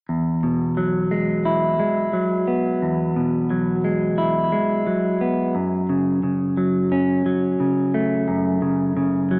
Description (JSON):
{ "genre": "rock", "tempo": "88 BPM", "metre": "4/4", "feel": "straight", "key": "E major", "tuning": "A4 = 439 Hz", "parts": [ { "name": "semi-hollow electric guitar", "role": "arpeggios", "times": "0.1-9.4 s", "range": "E2 to E4", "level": "-18 LUFS", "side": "equal", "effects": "tape echo" } ], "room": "wet large studio reverb, RT60 1.1 s", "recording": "small speaker sound", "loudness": "-18 LUFS", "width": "side -40 dB against mid", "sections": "0.1-9.4 A section", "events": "none", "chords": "0.1 Eadd9; 5.5 F#m" }